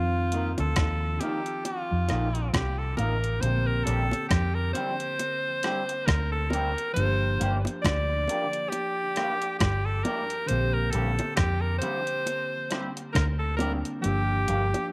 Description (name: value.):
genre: lovers rock reggae.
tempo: 68 BPM.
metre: 4/4.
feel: swing 58% on 16ths.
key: Bb major.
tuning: A4 = 440 Hz.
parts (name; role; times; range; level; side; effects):
edgy alto saxophone; melody; 0.0-14.9 s; F4 to D5; -32 LUFS; equal; tape echo.
tine electric piano; accompaniment; 0.0-14.9 s; D3 to G4; -38 LUFS; equal; lush chorus.
mellow electric guitar; riff; 0.0-14.6 s; G2 to F3; -43 LUFS; equal; none.
vintage muted fingered electric bass; bass; 0.0-14.7 s; G1 to F2; -30 LUFS; equal; none.
electric guitar through a small old amp; stabs; 0.3-14.6 s; F3 to Bb4; -38 LUFS; equal; analog chorus.
gated 80s digital drum machine; drums; 0.3-14.9 s; hi-hat, kick drum, rim click; -32 LUFS; equal; overdrive.
bongos; percussion; 0.6-14.9 s; none; -39 LUFS; equal; none.
room: moderate spring reverb, RT60 2.5 s.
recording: none.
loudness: -27 LUFS.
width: mono.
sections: 0.0-3.4 A section; 3.4-14.9 B section.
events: none.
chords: 0.0 F7sus4; 3.4 Bb69; 7.0 Gm7; 10.5 Bb69; 14.0 Gm7.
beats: 0.77 1.65 2.54 | 3.42 4.31 5.19 6.08 | 6.96 7.85 8.73 9.62 | 10.50 11.38 12.27 13.15 | 14.04 14.92.